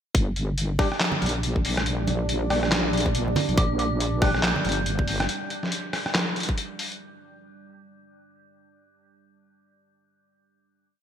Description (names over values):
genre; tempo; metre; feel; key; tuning
deep dubstep; 140 BPM; 4/4; swing 59% on 16ths, half-time; G minor; A4 = 442 Hz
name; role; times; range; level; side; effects
deep dark ambient pad; sustained chords; 1.4-7.0 s; G3 to D5; -32 LUFS; right 3 dB; chorus, built-in reverb
wobble bass; bass; 0.1-5.3 s; G1 to Bb1; -26 LUFS; equal; chorus, tube saturation
electronic kick drum; drums; 0.1-6.6 s; none; -23 LUFS; equal; none
trip hop sampler-style drum kit; drums; 0.1-7.0 s; handclaps, hi-hat, rim click, snare drum; -26 LUFS; left 1 dB; gated reverb
percussive organ stab; stabs; 0.8-4.3 s; G3 to G4; -33 LUFS; left 2 dB; lush chorus, dub echo
congas; percussion; 1.1-4.7 s; none; -30 LUFS; right 4 dB; none
dark detuned synth bell; melody; 3.6-6.5 s; D6 to G6; -33 LUFS; right 1 dB; chorus, dub echo
room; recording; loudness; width
moderate plate reverb, RT60 2.1 s; bright 1980s-style digital production; -22 LUFS; side -9 dB against mid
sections
0.1-7.0 drop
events
drop 0.1-7.0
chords
0.1 G5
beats
| 0.15 0.58 1.00 1.43 | 1.86 2.29 2.72 3.15 | 3.58 4.00 4.43 4.86 | 5.29 5.72 6.15 6.58